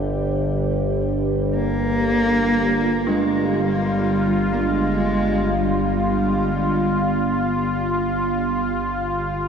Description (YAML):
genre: dark ambient drone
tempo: free time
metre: none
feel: none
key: G phrygian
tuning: A4 = 440 Hz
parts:
  - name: sweeping resonant pad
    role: sustained chords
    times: 0.0-9.5 s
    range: D3 to G4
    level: -24 LUFS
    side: left 1 dB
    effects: chorus, shimmer reverb
  - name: overtone-sweeping drone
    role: drone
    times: 0.0-9.5 s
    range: G1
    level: -23 LUFS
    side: right 1 dB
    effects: chorus, built-in reverb
  - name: dark cello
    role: melody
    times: 1.6-7.6 s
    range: G3 to Bb3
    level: -22 LUFS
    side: equal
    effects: shimmer reverb, ping-pong delay
  - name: dark detuned synth bell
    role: arpeggios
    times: 3.1-9.5 s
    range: D4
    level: -31 LUFS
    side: right 2 dB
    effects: none
room: wet cathedral reverb, RT60 5.5 s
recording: in a vast, echoing space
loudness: -18 LUFS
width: side -6 dB against mid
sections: 0.0-9.5 A section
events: fade-out 7.0-9.5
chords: 0.0 G5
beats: free time